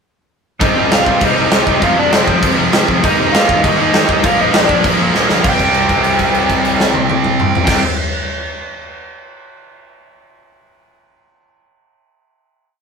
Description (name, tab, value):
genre	punk rock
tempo	199 BPM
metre	4/4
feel	straight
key	C minor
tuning	A4 = 441 Hz
part	lead guitar through a small cranked amp	melody	0.6-7.8 s	C4 to G5	-17 LUFS	left 1 dB	overdrive
part	overdriven electric guitar	riff	0.6-7.8 s	F2 to Eb4	-25 LUFS	equal	none
part	sludgy distorted guitar	riff	0.6-7.8 s	F2 to Eb4	-24 LUFS	left 8 dB	none
part	tight distorted guitar	riff	0.6-7.8 s	F2 to Eb4	-16 LUFS	right 4 dB	distortion
part	fuzz picked electric bass	bass	0.6-7.8 s	F1 to C3	-23 LUFS	equal	overdrive
part	big rock drum kit	drums	0.6-7.7 s	crash cymbal, kick drum, snare drum, toms	-15 LUFS	equal	none
room	moderate studio reverb, RT60 0.6 s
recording	rough rehearsal-room recording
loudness	-11 LUFS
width	side -5 dB against mid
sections	0.6-5.4 chorus; 5.4-7.9 final chord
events	drum fill 5.1-5.4; held note 5.4-7.7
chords	0.6 Cm; 1.8 F5; 3.0 Eb5; 4.2 Bb; 5.4 C5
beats	| 0.61 0.91 1.22 1.52 | 1.82 2.12 2.43 2.73 | 3.03 3.33 3.63 3.93 | 4.23 4.53 4.83 5.14 | 5.44 5.74 6.04 6.34 | 6.64 6.95 7.25 7.55